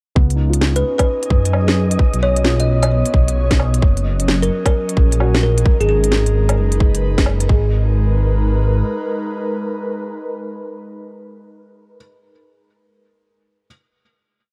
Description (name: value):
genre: future garage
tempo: 131 BPM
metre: 4/4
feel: swing 63% on 16ths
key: G# dorian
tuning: A4 = 440 Hz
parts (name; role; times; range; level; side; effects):
- felt-muted upright piano; accompaniment; 0.2-13.7 s; B3 to G#4; -32 LUFS; equal; sidechain pumping, dub echo
- airy breathy pad; sustained chords; 0.2-11.9 s; F#3 to D#5; -27 LUFS; equal; chorus, sidechain pumping
- dark detuned saw bass; bass; 0.2-8.8 s; F#1 to F#2; -19 LUFS; equal; sidechain pumping
- electronic kick drum; drums; 0.2-7.6 s; none; -16 LUFS; equal; overdrive
- wind-like tuned noise texture; texture; 0.8-7.5 s; D#5; -37 LUFS; equal; built-in reverb
- organic electronic drum kit; drums; 0.3-7.5 s; hi-hat, snare drum, woodblock; -23 LUFS; equal; overdrive
- kalimba; melody; 0.8-6.3 s; G#4 to D#5; -25 LUFS; equal; vintage 12-bit sampler grit, digital delay
room: little or no reverb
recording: dark, warm production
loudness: -16 LUFS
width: mono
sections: 0.2-7.5 groove; 7.5-11.2 final chord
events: band accent 7.1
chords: 0.2 C#7sus4; 2.0 Badd9; 3.8 F#69; 5.7 G#m9; 7.5 G#madd9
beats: | 0.16 0.62 1.08 1.54 | 2.00 2.45 2.91 3.37 | 3.83 4.29 4.74 5.20 | 5.66 6.12 6.58 7.03 | 7.49 7.95 8.41 8.87 | 9.32 9.78 10.24 10.70